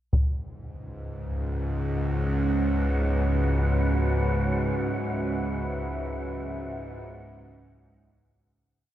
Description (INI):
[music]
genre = dark ambient drone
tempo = free time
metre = none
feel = none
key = C# minor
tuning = A4 = 440 Hz
[part]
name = deep dark ambient pad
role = sustained chords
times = 1.5-8.7 s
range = C#4 to E5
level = -31 LUFS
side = right 2 dB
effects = chorus, built-in reverb
[part]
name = taiko ensemble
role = percussion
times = 0.1-0.3 s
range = none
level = -28 LUFS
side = equal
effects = low-pass filter on perc
[part]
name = bowed-like drone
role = drone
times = 0.9-8.8 s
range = C#2 to G#2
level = -26 LUFS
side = equal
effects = built-in reverb
[part]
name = wind-like tuned noise texture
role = texture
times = 1.5-8.7 s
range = F#5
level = -38 LUFS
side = right 1 dB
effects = built-in reverb
[sound]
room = wet cathedral reverb, RT60 5.3 s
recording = in a vast, echoing space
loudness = -24 LUFS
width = side -12 dB against mid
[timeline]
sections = 0.1-8.7 A section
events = fade-in on synth texture 0.1-8.7; fade-out 4.4-8.7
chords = 0.1 C#m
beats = free time